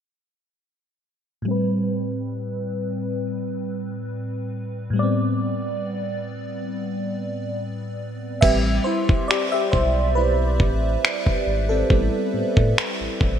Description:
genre	contemporary R&B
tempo	69 BPM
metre	4/4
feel	swing 54% on 16ths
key	A minor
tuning	A4 = 440 Hz
part	FM electric piano with soft pad layer	accompaniment	1.4-13.4 s	A2 to E5	-23 LUFS	equal	chorus, phaser, low-pass filter
part	sub bass with octave	bass	8.4-13.4 s	G#1 to A2	-22 LUFS	equal	none
part	dusty soul sampler-style drum kit	drums	8.4-13.4 s	crash cymbal, finger snaps, kick drum	-21 LUFS	equal	overdrive, gated reverb
room	moderate lush hall reverb, RT60 2.7 s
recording	bright 1980s-style digital production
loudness	-20 LUFS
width	side -9 dB against mid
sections	1.5-8.4 A section; 8.4-13.4 B section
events	filter sweep on FM electric piano 1.5-8.4; FM electric piano solo 8.4-13.4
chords	1.5 Am9

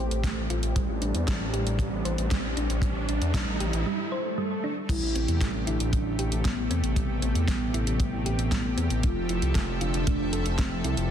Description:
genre	synthwave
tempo	116 BPM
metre	4/4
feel	straight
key	A minor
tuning	A4 = 440 Hz
part	lush unison pad	sustained chords	0.0-11.1 s	C3 to E5	-34 LUFS	equal	chorus, sidechain pumping
part	thumb-piano-like synth pluck	arpeggios	0.0-11.1 s	G3 to C5	-34 LUFS	right 2 dB	chorus, tape echo
part	dark detuned saw bass	bass	0.0-11.1 s	F1 to E2	-28 LUFS	equal	none
part	riser and swell	sound effects	0.0-4.9 s	none	-36 LUFS	right 2 dB	none
part	pop drum kit	drums	0.1-11.1 s	crash cymbal, hi-hat, snare drum	-35 LUFS	equal	none
part	kick drum	drums	0.2-10.7 s	none	-27 LUFS	equal	none
part	soft octave-layered synth lead	melody	4.9-11.1 s	B3 to F4	-32 LUFS	equal	chorus, phaser, tape echo
room	light reverb, digital ambience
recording	dense, heavily limited modern master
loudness	-24 LUFS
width	side -9 dB against mid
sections	0.0-4.9 A section; 4.9-11.1 B section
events	riser 0.0-3.9; filter sweep on analog synth pad 0.0-4.9; break 3.9-4.9; swell 3.9-4.9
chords	0.0 F/A; 0.8 Csus2/A; 4.9 Am7; 9.0 Fmaj7

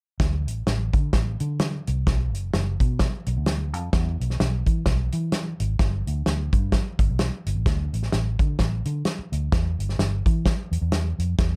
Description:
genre	uptempo 1960s-style soul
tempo	129 BPM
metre	4/4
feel	swing 58% on 8ths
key	D mixolydian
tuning	A4 = 440 Hz
part	vintage muted fingered electric bass	bass	0.2-11.6 s	F#1 to E3	-28 LUFS	equal	none
part	natural country drum kit	drums	0.2-11.5 s	hi-hat, kick drum, snare drum	-26 LUFS	equal	none
room	little or no reverb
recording	dark, warm production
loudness	-24 LUFS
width	mono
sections	0.2-11.6 A section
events	none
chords	none

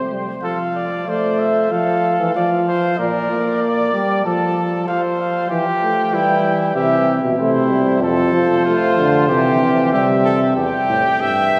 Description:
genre	classical, imitative canzona for brass ensemble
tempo	94 BPM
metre	4/4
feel	straight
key	F major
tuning	A4 = 440 Hz
part	warm trumpet	melody	0.0-11.6 s	C5 to A5	-23 LUFS	equal	none
part	bright trumpet	second line	0.0-11.6 s	E4 to E5	-25 LUFS	equal	none
part	warm euphonium	bass	0.0-0.1, 6.1-11.6 s	E2 to F3	-21 LUFS	equal	none
part	warm euphonium	accompaniment	0.1-10.6 s	Bb2 to Bb3	-23 LUFS	equal	none
room	wet cathedral reverb, RT60 5.1 s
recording	heard from further back in the room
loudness	-17 LUFS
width	mono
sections	0.4-10.6 A section; 10.6-11.6 B section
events	none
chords	0.4 F; 3.0 Bb; 4.2 F; 5.5 Emadd11; 6.8 C; 8.0 F; 9.3 C; 10.6 Emadd11

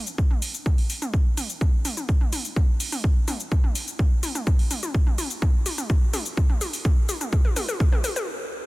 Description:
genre	melodic techno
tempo	126 BPM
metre	4/4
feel	straight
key	none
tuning	none
part	house drum kit	drums	0.1-8.3 s	hi-hat, shaker, toms	-28 LUFS	equal	sidechain pumping on toms, high-pass filter on toms, studio reverb, sidechain pumping on hats, high-pass filter on hats, sidechain pumping on perc, high-pass filter on perc
part	electronic kick drum	drums	0.2-7.9 s	none	-20 LUFS	equal	studio reverb
room	digital ambience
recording	dense, heavily limited modern master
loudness	-21 LUFS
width	side -20 dB against mid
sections	0.0-8.7 A section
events	build-up 0.0-8.7; drum fill 1.6-8.3; stop 8.3-8.7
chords	none

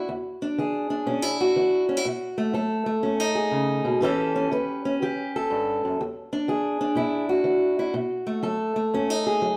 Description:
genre	blues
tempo	122 BPM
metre	4/4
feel	swing 66% on 8ths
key	E mixolydian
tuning	A4 = 440 Hz
part	fingerpicked steel-string acoustic guitar	solo	0.0-9.6 s	E2 to B4	-25 LUFS	equal	none
room	wet stone room reverb, RT60 1.1 s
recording	band playing live in one room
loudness	-25 LUFS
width	mono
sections	0.0-9.6 A section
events	none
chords	0.0 E7; 2.1 B7; 4.0 A7; 6.0 E7; 8.0 B7

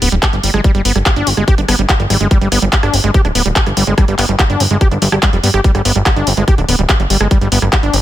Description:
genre	psychedelic trance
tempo	144 BPM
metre	4/4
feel	straight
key	unclear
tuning	A4 = 440 Hz
part	overdriven acid bass	riff	0.0-8.0 s	G3 to G4	-17 LUFS	equal	distortion, auto-pan, sidechain pumping, dub echo
part	fat analog bass	bass	0.0-8.0 s	D1 to G2	-15 LUFS	equal	none
part	drum and bass drum kit	drums	0.0-8.0 s	handclaps, hi-hat, rim click	-17 LUFS	equal	small room reverb
part	electronic kick drum	drums	0.2-7.8 s	none	-12 LUFS	equal	small room reverb
room	little or no reverb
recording	none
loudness	-10 LUFS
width	side -13 dB against mid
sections	0.0-8.0 A section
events	none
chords	0.0 G5

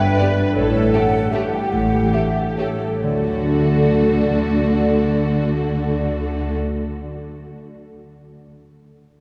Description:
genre	classical, orchestral ballroom waltz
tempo	124-169 BPM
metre	3/4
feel	rubato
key	D major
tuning	A4 = 440 Hz
part	large flute ensemble	second line	0.0-6.5 s	C#5 to G5	-28 LUFS	equal	none
part	rich symphonic viola section	accompaniment	0.0-6.5 s	A3 to B4	-26 LUFS	equal	none
part	concert harp	arpeggios	0.0-7.4 s	G2 to B4	-27 LUFS	equal	none
part	rich symphonic violin section	melody	0.2-6.6 s	A4 to D5	-32 LUFS	equal	none
part	rich studio violin section	second line	0.2-6.5 s	A3 to G4	-32 LUFS	equal	none
part	rich symphonic cello section	bass	0.6-6.5 s	A2 to D3	-26 LUFS	equal	none
part	warm studio double bass section	bass	0.6-6.5 s	A1 to D2	-26 LUFS	equal	none
room	wet cathedral reverb, RT60 4.7 s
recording	dark, warm production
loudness	-19 LUFS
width	mono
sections	0.0-3.0 A section; 3.0-5.8 B section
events	slowing down 0.0-3.0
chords	0.0 G; 0.5 A7; 3.0 D

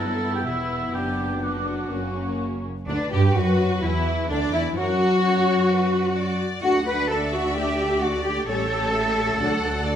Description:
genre	classical, dramatic, fast romantic movement for symphony orchestra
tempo	128 BPM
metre	4/4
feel	rubato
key	B minor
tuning	A4 = 440 Hz
part	rich symphonic violin section	melody	0.0-10.0 s	C#4 to D5	-34 LUFS	left 2 dB	none
part	bright large flute ensemble	second line	0.0-10.0 s	D5 to E6	-31 LUFS	equal	none
part	clear oboe	second line	0.0-2.4 s	E5 to A5	-32 LUFS	right 1 dB	none
part	rich symphonic violin section	second line	0.0-10.0 s	A#3 to F#5	-33 LUFS	left 3 dB	none
part	warm clarinet	second line	0.0-10.0 s	A#3 to B4	-32 LUFS	left 1 dB	none
part	rich symphonic viola section	accompaniment	0.0-10.0 s	A3 to A4	-31 LUFS	right 2 dB	none
part	mellow French horn section	sustained chords	0.0-9.6 s	D3 to E4	-27 LUFS	left 4 dB	none
part	clear symphonic double bass section	bass	0.0-10.0 s	E1 to G2	-27 LUFS	right 2 dB	none
part	rich symphonic cello section	bass	0.0-10.0 s	E2 to B4	-26 LUFS	right 1 dB	none
room	wet recital hall reverb, RT60 1.5 s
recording	none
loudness	-20 LUFS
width	side -9 dB against mid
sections	0.0-2.9 A section; 2.9-10.0 A section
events	none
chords	0.0 Em/G; 0.9 Bm/F#; 1.9 F#; 2.9 Bm; 4.8 F#; 6.6 D; 8.5 A7; 9.4 D

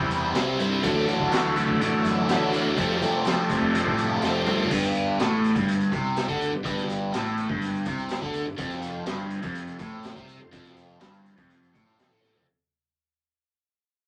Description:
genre	psychedelic rock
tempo	124 BPM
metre	4/4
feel	straight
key	G mixolydian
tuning	A4 = 441 Hz
part	raw garage guitar	riff	0.0-12.5 s	F2 to E4	-27 LUFS	equal	overdrive, phaser
part	fuzz fingered electric bass	bass	0.0-12.5 s	F1 to F3	-36 LUFS	equal	overdrive
part	bright tonewheel organ	sustained chords	0.1-12.4 s	E3 to F5	-36 LUFS	equal	chorus vibrato, slow rotary speaker
part	raw garage drum kit	drums	0.1-12.5 s	crash cymbal, hi-hat, kick drum, snare drum, toms	-34 LUFS	equal	none
part	tambourine	percussion	0.1-12.3 s	none	-50 LUFS	equal	none
room	wet club reverb, RT60 0.5 s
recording	vinyl crackle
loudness	-25 LUFS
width	mono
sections	0.0-4.7 A section; 4.7-12.5 B section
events	drum fill 4.2-4.7, 12.2; fade-out 4.7-12.5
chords	0.0 Cadd9; 0.8 Dadd9; 2.8 F6; 4.7 G; 8.6 F5

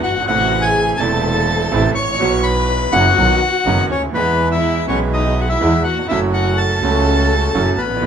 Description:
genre	tango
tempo	124 BPM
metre	4/4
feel	rubato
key	unclear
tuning	A4 = 440 Hz
part	bandoneon	melody	0.0-8.1 s	B4 to C#6	-19 LUFS	left 2 dB	none
part	warm chamber violin section	second line	0.0-8.1 s	B3 to C#5	-22 LUFS	left 2 dB	none
part	clear double bass	bass	0.0-8.1 s	E1 to E2	-19 LUFS	equal	none
part	bright concert grand piano	accompaniment	0.1-8.1 s	E1 to A4	-21 LUFS	right 5 dB	none
part	bandoneon	stabs	0.3-8.1 s	F#3 to F#4	-26 LUFS	right 5 dB	none
room	moderate large studio reverb, RT60 0.8 s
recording	minimal, uncompressed stereo recording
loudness	-14 LUFS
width	side -8 dB against mid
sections	0.0-8.1 A section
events	none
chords	0.3 Am; 2.2 Bsus4; 3.2 B; 4.1 E; 6.1 F#m

